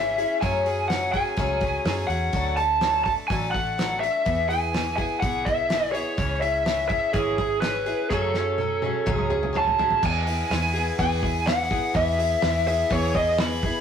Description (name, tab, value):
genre	folk rock and heartland rock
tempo	125 BPM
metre	4/4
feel	straight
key	E major from 10.0 s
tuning	A4 = 440 Hz
part	lead guitar through a small cranked amp	melody	0.0-13.8 s	G#4 to B5	-24 LUFS	equal	overdrive
part	picked acoustic archtop guitar	accompaniment	0.0-13.8 s	F#2 to A4	-29 LUFS	left 2 dB	none
part	vintage muted fingered electric bass	bass	0.0-13.7 s	G#1 to F#2	-30 LUFS	right 1 dB	none
part	damped 70s drum kit	drums	0.2-13.7 s	crash cymbal, hi-hat, kick drum, snare drum, toms	-29 LUFS	right 1 dB	none
room	moderate stone room reverb, RT60 1.0 s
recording	rough rehearsal-room recording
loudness	-21 LUFS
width	side -7 dB against mid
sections	0.0-10.0 A section; 10.0-13.8 B section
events	drum fill 8.1-10.0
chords	0.4 F#madd9; 2.3 D; 4.3 E; 6.2 C#m; 8.1 F#madd9; 10.0 E